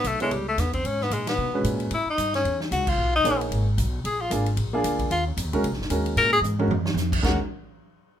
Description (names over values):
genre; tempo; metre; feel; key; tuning
jazz, small-group swing and bop; 226 BPM; 4/4; swing 58% on 8ths; Eb minor; A4 = 440 Hz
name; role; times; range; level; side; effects
bright tenor saxophone; melody; 0.0-7.4 s; G3 to Bb4; -23 LUFS; left 2 dB; none
upright bass; bass; 0.0-7.4 s; Gb1 to Cb3; -27 LUFS; equal; none
swinging big-band drum kit; drums; 0.0-7.3 s; crash cymbal, hi-hat, kick drum, ride cymbal, snare drum, toms; -30 LUFS; right 1 dB; none
warm concert grand piano; accompaniment; 0.2-7.4 s; Ab3 to C#5; -27 LUFS; right 1 dB; none
room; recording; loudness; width
moderate club reverb, RT60 0.6 s; minimal, uncompressed stereo recording; -22 LUFS; side -10 dB against mid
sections
0.0-7.2 A section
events
band accent 1.2, 2.8; drum fill 6.4-7.0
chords
0.0 Aadd9; 0.8 Abm9; 1.9 A7; 3.0 B6; 4.0 Bb7; 5.1 Ebm11; 7.2 Ebm7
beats
0.05 0.32 0.58 | 0.85 1.12 1.38 1.65 | 1.92 2.18 2.45 2.71 | 2.98 3.25 3.51 3.78 | 4.04 4.31 4.58 4.84 | 5.11 5.37 5.64 5.90 | 6.17 6.43 6.70 6.96 | 7.23